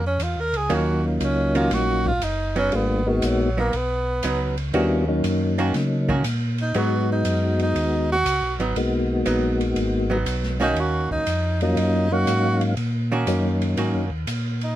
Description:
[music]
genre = soul jazz organ trio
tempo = 119 BPM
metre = 4/4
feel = swing 68% on 8ths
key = Eb minor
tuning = A4 = 443 Hz
[part]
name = warm tenor saxophone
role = melody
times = 0.0-14.8 s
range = Eb3 to Bb4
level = -24 LUFS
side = right 2 dB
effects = none
[part]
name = mellow tonewheel organ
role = bass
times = 0.0-14.8 s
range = Gb1 to Db3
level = -25 LUFS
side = equal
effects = slow rotary speaker
[part]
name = open jazz drum kit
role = drums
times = 0.2-14.7 s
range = hi-hat, kick drum, ride cymbal, snare drum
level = -33 LUFS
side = right 2 dB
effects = none
[part]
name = percussive tonewheel organ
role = melody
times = 0.7-14.1 s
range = Gb3 to F5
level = -22 LUFS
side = left 2 dB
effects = slow rotary speaker, chorus vibrato
[part]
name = archtop guitar, miked and amplified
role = accompaniment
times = 0.7-14.1 s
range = Eb3 to Gb4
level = -25 LUFS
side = right 4 dB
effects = none
[sound]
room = light reverb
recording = minimal, uncompressed stereo recording, vinyl crackle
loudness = -20 LUFS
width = side -13 dB against mid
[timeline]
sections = 0.0-14.8 A section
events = tenor saxophone solo 0.0-14.8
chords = 0.0 Ebm7; 2.7 Abm7; 4.7 Ebm7; 6.7 Abm7; 10.8 Ebm7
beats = 0.20 | 0.70 1.21 1.71 2.21 | 2.72 3.22 3.73 4.23 | 4.73 5.24 5.74 6.24 | 6.75 7.25 7.75 8.26 | 8.76 9.26 9.76 10.26 | 10.77 11.27 11.77 12.27 | 12.77 13.28 13.78 14.28

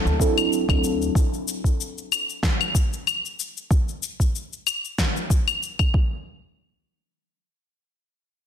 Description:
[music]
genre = sunset chillout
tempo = 94 BPM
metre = 4/4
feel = swing 54% on 16ths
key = unclear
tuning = A4 = 440 Hz
[part]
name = mellow FM electric piano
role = accompaniment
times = 0.0-1.1 s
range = F#3 to A4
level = -24 LUFS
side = moving between left 4 dB and right 3 dB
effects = chorus, phaser, auto-pan, tape echo
[part]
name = upright bass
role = bass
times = 0.1-1.1 s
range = D2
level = -25 LUFS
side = equal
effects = none
[part]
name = electronic shaker, claves and snare drum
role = drums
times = 0.1-5.9 s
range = none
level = -25 LUFS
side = left 4 dB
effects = none
[part]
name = electronic kick drum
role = drums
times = 0.2-6.1 s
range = none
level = -21 LUFS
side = equal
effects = none
[sound]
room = light reverb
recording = dense, heavily limited modern master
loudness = -21 LUFS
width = side -9 dB against mid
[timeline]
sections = 0.0-6.3 A section; 6.3-8.5 B section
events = none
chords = 0.0 D7; 1.1 N.C.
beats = 0.51 | 1.15 1.79 2.43 3.06 | 3.70 4.34 4.98 5.62

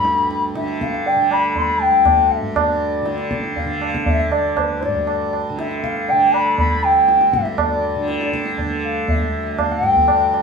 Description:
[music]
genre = indian classical, Hindustani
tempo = 120 BPM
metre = 5/4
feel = straight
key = D raga bageshri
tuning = A4 = 440 Hz
[part]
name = reedy bansuri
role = melody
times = 0.0-10.4 s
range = B4 to C6-22c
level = -17 LUFS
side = left 1 dB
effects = none
[part]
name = tanpura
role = drone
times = 0.0-10.4 s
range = D2 to D3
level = -23 LUFS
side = right 1 dB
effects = none
[part]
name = tabla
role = percussion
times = 0.0-10.4 s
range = none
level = -23 LUFS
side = right 3 dB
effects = none
[sound]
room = wet studio reverb, RT60 0.6 s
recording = band playing live in one room, studio reverb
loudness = -16 LUFS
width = side -5 dB against mid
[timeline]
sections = 0.0-10.4 A section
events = none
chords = none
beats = | 0.06 0.56 1.06 1.57 2.07 | 2.57 3.07 3.58 4.08 4.58 | 5.08 5.58 6.08 6.58 7.08 | 7.59 8.09 8.59 9.09 9.59 | 10.09

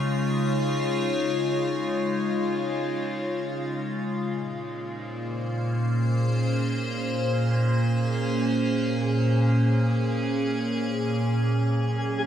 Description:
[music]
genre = ambient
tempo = free time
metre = none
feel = none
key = unclear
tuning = A4 = 439 Hz
[part]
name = evolving wavetable pad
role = sustained chords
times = 0.0-12.3 s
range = A#2 to C#5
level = -23 LUFS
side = equal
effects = phaser, built-in reverb
[part]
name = twinkling granular texture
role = texture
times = 11.9-12.3 s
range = G#4 to G#5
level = -31 LUFS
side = left 2 dB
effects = built-in reverb
[sound]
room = wet huge ambient reverb, RT60 7.5 s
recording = none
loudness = -23 LUFS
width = side -10 dB against mid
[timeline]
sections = 0.0-11.7 A section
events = none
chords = 0.0 C#add9; 4.3 A#m7; 11.7 F#5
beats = free time

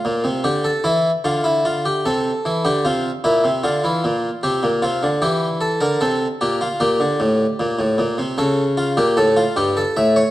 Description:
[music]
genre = classical, baroque-style two-part invention for harpsichord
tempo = 76 BPM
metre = 4/4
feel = straight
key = unclear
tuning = A4 = 440 Hz
[part]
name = harpsichord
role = solo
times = 0.0-10.3 s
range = G2 to E5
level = -16 LUFS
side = equal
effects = none
[sound]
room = wet recital hall reverb, RT60 1.4 s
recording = dark, warm production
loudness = -16 LUFS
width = side -15 dB against mid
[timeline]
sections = 0.5-10.3 A section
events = none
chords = 0.5 Dm; 2.1 C; 3.6 Bb; 5.2 Am; 6.8 Gm; 8.4 A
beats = | 0.46 1.25 2.05 2.85 | 3.64 4.43 5.22 6.02 | 6.81 7.59 8.39 9.18 | 9.97

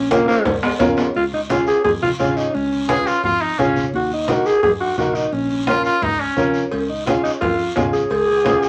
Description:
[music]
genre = latin, cumbia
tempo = 172 BPM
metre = 4/4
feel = straight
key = unclear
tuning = A4 = 440 Hz
[part]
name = breathy alto saxophone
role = melody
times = 0.0-8.7 s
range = Bb3 to Ab4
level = -20 LUFS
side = equal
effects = none
[part]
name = fingered electric bass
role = bass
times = 0.0-8.7 s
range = Ab1 to Gb2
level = -33 LUFS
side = equal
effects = none
[part]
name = clear upright piano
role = accompaniment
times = 0.1-8.7 s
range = Db4 to Cb5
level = -23 LUFS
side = equal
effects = none
[part]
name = congas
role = percussion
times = 0.1-8.6 s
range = none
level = -28 LUFS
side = equal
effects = none
[part]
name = guiro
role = percussion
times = 0.1-8.7 s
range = none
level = -36 LUFS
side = equal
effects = none
[part]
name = timbales and cowbell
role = percussion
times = 0.3-1.1, 6.7-8.3 s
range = none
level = -25 LUFS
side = equal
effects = none
[part]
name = brilliant trumpet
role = second line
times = 2.9-6.6 s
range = Db4 to Ab4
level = -22 LUFS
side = equal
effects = none
[sound]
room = moderate small room reverb, RT60 0.5 s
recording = vinyl crackle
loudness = -18 LUFS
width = mono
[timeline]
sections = 0.0-1.2 A section; 1.2-8.7 B section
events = alto saxophone solo 0.0-1.2; drum fill 0.3-1.2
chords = 0.0 Bbm; 1.2 Db; 3.9 Ebm; 5.3 Bbm; 6.7 Db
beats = 0.11 0.46 0.80 | 1.15 1.50 1.85 2.19 | 2.54 2.89 3.24 3.59 | 3.93 4.28 4.63 4.98 | 5.33 5.68 6.02 6.37 | 6.72 7.07 7.42 7.76 | 8.11 8.46

